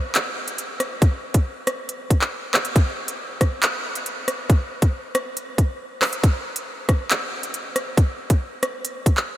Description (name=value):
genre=hip hop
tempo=138 BPM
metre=4/4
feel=half-time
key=none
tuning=none
part: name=drill drum kit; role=drums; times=0.1-9.3 s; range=handclaps, hi-hat, kick drum, rim click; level=-20 LUFS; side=equal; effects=none
room=moderate huge ambient reverb, RT60 6.6 s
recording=dreamy mix soaked in reverb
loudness=-20 LUFS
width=side -14 dB against mid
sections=0.0-9.4 A section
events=none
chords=none